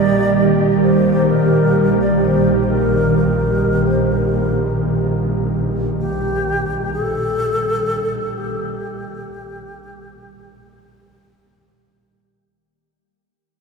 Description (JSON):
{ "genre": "ambient", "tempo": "64 BPM", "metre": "4/4", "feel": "straight", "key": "unclear", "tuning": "A4 = 440 Hz", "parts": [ { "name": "mellow alto flute", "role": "melody", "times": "0.0-11.7 s", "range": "G4 to D5", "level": "-22 LUFS", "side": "left 2 dB", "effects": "tape echo" }, { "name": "ethereal airy pad", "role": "sustained chords", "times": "0.0-12.7 s", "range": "Eb3 to G4", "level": "-17 LUFS", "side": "right 2 dB", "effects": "ensemble chorus, built-in reverb" }, { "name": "dark studio double bass section", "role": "bass", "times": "0.0-12.6 s", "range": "Bb1", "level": "-24 LUFS", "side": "equal", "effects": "none" } ], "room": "wet huge ambient reverb, RT60 7.5 s", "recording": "in a vast, echoing space, small room ambience", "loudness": "-15 LUFS", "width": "side -4 dB against mid", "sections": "0.0-12.7 A section", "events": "fade-out 2.6-12.7", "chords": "0.0 Eb/Bb", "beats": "0.37 | 1.32 2.25 3.19 4.13 | 5.07 6.01 6.95 7.89 | 8.83 9.78 10.73 11.70" }